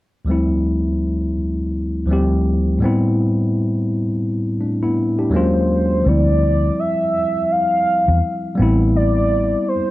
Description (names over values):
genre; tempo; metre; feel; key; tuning
hip hop; 83 BPM; 4/4; swing 61% on 16ths; unclear; A4 = 440 Hz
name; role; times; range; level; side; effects
tine electric piano; accompaniment; 0.2-9.9 s; D2 to G4; -18 LUFS; left 1 dB; none
warm velvety synth lead; melody; 5.4-9.9 s; C5 to F5; -19 LUFS; equal; chorus, plate reverb
vintage muted fingered electric bass; bass; 6.1-9.5 s; A1 to E2; -16 LUFS; equal; none
room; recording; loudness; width
moderate small room reverb, RT60 0.5 s; dark, warm production; -16 LUFS; side -17 dB against mid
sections
0.3-6.0 A section; 6.0-9.9 B section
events
none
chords
0.3 Dm11; 2.8 Am9; 5.3 D#m11; 6.0 Dm11; 8.6 Am9